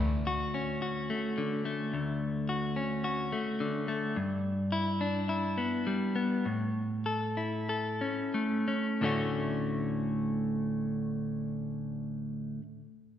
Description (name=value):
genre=rock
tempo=86-108 BPM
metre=4/4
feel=straight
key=D major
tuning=A4 = 437 Hz
part: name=clean electric guitar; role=arpeggios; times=0.0-12.6 s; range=D2 to A4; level=-30 LUFS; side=left 1 dB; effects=none
room=wet scoring stage reverb, RT60 1.8 s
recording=recorded in a church or concert hall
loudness=-30 LUFS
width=side -10 dB against mid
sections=0.0-9.0 A section; 9.0-11.8 B section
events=slowing down 4.2-9.0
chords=0.0 Dmaj7; 4.2 G6; 6.5 A; 9.0 Dmaj7